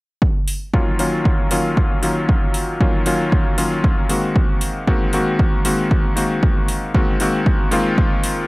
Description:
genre	nu-disco, nu disco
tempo	116 BPM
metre	4/4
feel	straight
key	Eb dorian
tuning	A4 = 440 Hz
part	electronic kick drum	drums	0.2-8.1 s	none	-18 LUFS	equal	overdrive
part	electronic hi-hat	drums	0.5-8.3 s	none	-27 LUFS	right 1 dB	overdrive
part	bright electric grand piano	accompaniment	0.7-8.5 s	Eb3 to Gb4	-19 LUFS	left 1 dB	low-pass filter
room	little or no reverb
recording	dry, gritty hardware recording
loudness	-15 LUFS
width	side -22 dB against mid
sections	0.2-8.5 A section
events	none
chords	0.2 Ebm9; 4.4 Ab7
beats	| 0.22 0.74 1.25 1.77 | 2.29 2.81 3.32 3.84 | 4.36 4.87 5.39 5.91 | 6.43 6.94 7.46 7.98

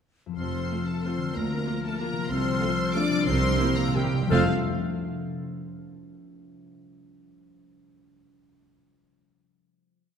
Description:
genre	classical, orchestral ballroom waltz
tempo	165-203 BPM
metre	3/4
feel	rubato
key	F major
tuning	A4 = 441 Hz
part	concert harp	arpeggios	0.3-4.5 s	F2 to F5	-31 LUFS	left 6 dB	none
part	rich symphonic violin section	melody	0.4-4.5 s	F5 to D6	-34 LUFS	left 3 dB	none
part	clear oboe	second line	0.4-4.5 s	A4 to C5	-39 LUFS	right 2 dB	none
part	dark clarinet	second line	0.4-4.4 s	F4 to A4	-36 LUFS	right 1 dB	none
part	flute section	second line	0.4-4.5 s	E6 to F6	-37 LUFS	left 1 dB	none
part	rich symphonic violin section	second line	0.4-4.5 s	G4 to F5	-35 LUFS	left 1 dB	none
part	mellow French horn section	sustained chords	0.4-4.5 s	G3 to F4	-32 LUFS	left 3 dB	none
part	rich symphonic cello section	bass	0.4-4.5 s	C2 to F2	-33 LUFS	right 3 dB	none
part	rich symphonic double bass section	bass	0.4-4.5 s	F1 to D2	-32 LUFS	right 3 dB	none
part	rich symphonic viola section	accompaniment	0.7-4.5 s	A3 to F4	-35 LUFS	right 5 dB	none
part	timpani	percussion	3.3-4.5 s	F2 to C3	-32 LUFS	right 3 dB	none
room	wet concert hall reverb, RT60 2.4 s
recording	minimal, uncompressed stereo recording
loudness	-24 LUFS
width	side -7 dB against mid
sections	0.4-4.3 A section; 4.3-5.3 final chord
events	timpani fill 3.3-4.3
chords	0.4 F; 1.4 Bb/D; 2.3 F/C; 3.3 C7; 4.3 F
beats	| 0.37 0.70 1.04 | 1.35 1.67 2.00 | 2.30 2.62 2.96 | 3.28 3.61 3.97 | 4.32

